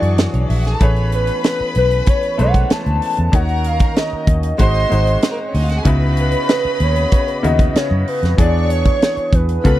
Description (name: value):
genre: lush 1970s-style soul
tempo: 95 BPM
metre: 4/4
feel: straight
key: unclear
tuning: A4 = 444 Hz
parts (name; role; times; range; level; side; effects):
- hollow square lead; melody; 0.0-9.8 s; B4 to A5; -20 LUFS; equal; chorus, phaser
- clear studio violin section; second line; 0.0-9.8 s; A#3 to C#6; -26 LUFS; equal; none
- bright grand piano; accompaniment; 0.0-9.8 s; C#3 to C#5; -24 LUFS; left 2 dB; none
- percussive tonewheel organ; sustained chords; 0.0-9.8 s; C#3 to D#5; -28 LUFS; right 1 dB; slow rotary speaker
- vintage muted fingered electric bass; bass; 0.0-9.8 s; G#1 to F#2; -17 LUFS; equal; none
- tight funk drum kit; drums; 0.0-9.8 s; hi-hat, kick drum, snare drum; -16 LUFS; equal; none
room: little or no reverb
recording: dry, close 1970s-style studio recording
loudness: -14 LUFS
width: side -14 dB against mid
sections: 0.0-9.8 A section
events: none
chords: 0.0 E9; 0.8 Amaj9; 3.3 D#m7; 4.6 G#7; 5.9 C#m11; 8.4 E7